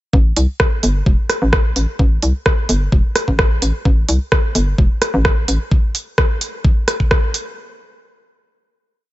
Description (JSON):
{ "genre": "minimal techno", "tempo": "129 BPM", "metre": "4/4", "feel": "straight", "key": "A minor", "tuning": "A4 = 440 Hz", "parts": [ { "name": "hollow knocking FM bass", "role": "bass", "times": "0.1-5.6 s", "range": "E1 to C2", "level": "-16 LUFS", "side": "equal", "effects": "sidechain pumping" }, { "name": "electronic kick drum", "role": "drums", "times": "0.1-7.2 s", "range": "none", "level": "-14 LUFS", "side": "equal", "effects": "none" }, { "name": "minimal click drum kit", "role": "drums", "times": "0.4-7.4 s", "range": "hi-hat, rim click", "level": "-18 LUFS", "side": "right 1 dB", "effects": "none" } ], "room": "little or no reverb", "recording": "nothing above 7.8 kHz", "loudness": "-14 LUFS", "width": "side -16 dB against mid", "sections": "0.1-7.6 groove", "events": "none", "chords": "none" }